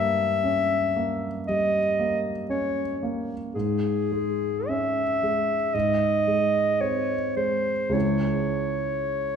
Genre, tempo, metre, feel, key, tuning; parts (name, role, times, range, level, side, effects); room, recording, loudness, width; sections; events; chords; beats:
classical, romantic duo for clarinet and grand piano; 51-59 BPM; 4/4; rubato; C# minor; A4 = 440 Hz
clear clarinet; melody; 0.0-9.4 s; G#4 to E5; -24 LUFS; equal
warm grand piano; accompaniment; 0.0-9.4 s; C#2 to E4; -27 LUFS; right 1 dB
wet scoring stage reverb, RT60 1.8 s; recorded in a church or concert hall; -22 LUFS; side -7 dB against mid
0.0-9.4 A section
0.0 Gdim7; 3.5 C#m/G#; 5.7 G#; 7.9 C#m
0.43 1.47 2.50 | 3.55 4.68 5.74 6.80 | 7.95 9.12